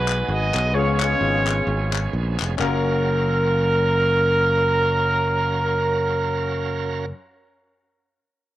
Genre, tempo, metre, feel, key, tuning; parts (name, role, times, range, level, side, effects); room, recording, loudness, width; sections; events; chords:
uptempo gospel; 130 BPM; 4/4; swing 57% on 8ths; F# major; A4 = 440 Hz
clear horn section; melody; 0.0-7.1 s; E#4 to D#5; -21 LUFS; right 1 dB
bright tonewheel organ; sustained chords; 0.0-7.1 s; E#3 to E#5; -31 LUFS; right 8 dB; slow rotary speaker, overdrive, cassette tape
modern bright fingered electric bass; bass; 0.0-7.1 s; E#1 to C#2; -23 LUFS; equal
group handclap; percussion; 0.1-2.8 s; -28 LUFS; left 9 dB
clear concert grand piano; accompaniment; 0.7-7.1 s; F#2 to A#4; -29 LUFS; left 7 dB; cassette tape
light reverb; home recording on cassette; -18 LUFS; side -14 dB against mid
0.0-2.6 A section; 2.6-6.3 B section
0.0 G#m7; 0.7 C#7; 2.6 F#maj7